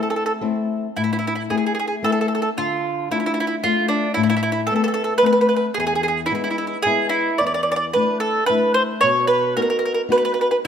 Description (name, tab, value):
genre	italian folk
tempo	112 BPM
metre	3/4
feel	straight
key	A harmonic minor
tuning	A4 = 439 Hz
part	mandolin	melody	0.0-10.7 s	D4 to D5	-19 LUFS	right 2 dB	none
part	flamenco guitar	accompaniment	0.0-10.7 s	E2 to F#4	-23 LUFS	left 5 dB	none
room	moderate scoring stage reverb, RT60 1.9 s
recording	none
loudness	-18 LUFS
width	side -8 dB against mid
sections	1.0-10.7 A section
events	none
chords	0.0 Am; 2.6 Dm; 4.2 Amadd9; 5.8 E; 7.4 E7sus4; 9.0 B